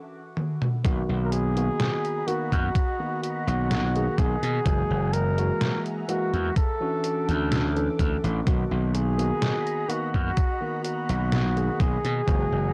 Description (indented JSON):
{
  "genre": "vaporwave",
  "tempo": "63 BPM",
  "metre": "4/4",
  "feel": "straight",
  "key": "B major",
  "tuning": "A4 = 440 Hz",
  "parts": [
    { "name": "detuned 8-bit digital drum machine", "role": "drums", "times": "0.4-12.5 s", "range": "hi-hat, snare drum, toms", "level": "-31 LUFS", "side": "equal", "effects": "overdrive" },
    { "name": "tine electric piano", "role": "accompaniment", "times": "0.8-12.7 s", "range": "D#3 to A4", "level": "-33 LUFS", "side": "equal", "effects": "subtle chorus" },
    { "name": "soft string machine", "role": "sustained chords", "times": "1.4-12.7 s", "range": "G#4 to D6", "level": "-44 LUFS", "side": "equal", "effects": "phaser, ensemble chorus" },
    { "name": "gritty slap bass", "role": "bass", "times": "0.8-12.7 s", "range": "F#1 to B2", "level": "-28 LUFS", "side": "equal", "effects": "overdrive" },
    { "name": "electronic kick drum", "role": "drums", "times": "0.8-12.5 s", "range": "none", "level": "-27 LUFS", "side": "equal", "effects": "overdrive" },
    { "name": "warm flugelhorn", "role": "melody", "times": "1.3-12.7 s", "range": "F#4 to A#4", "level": "-32 LUFS", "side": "equal", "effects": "tape echo" }
  ],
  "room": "digital ambience",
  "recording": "dry, gritty hardware recording, transformer saturation, cassette tape",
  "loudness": "-25 LUFS",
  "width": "mono",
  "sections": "0.8-12.7 A section",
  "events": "stop 0.0-0.8; drum fill 0.4-0.8",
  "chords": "0.0 N.C.; 0.8 Bmaj7; 4.7 F#9; 6.6 Dmaj9; 8.5 Bmaj7"
}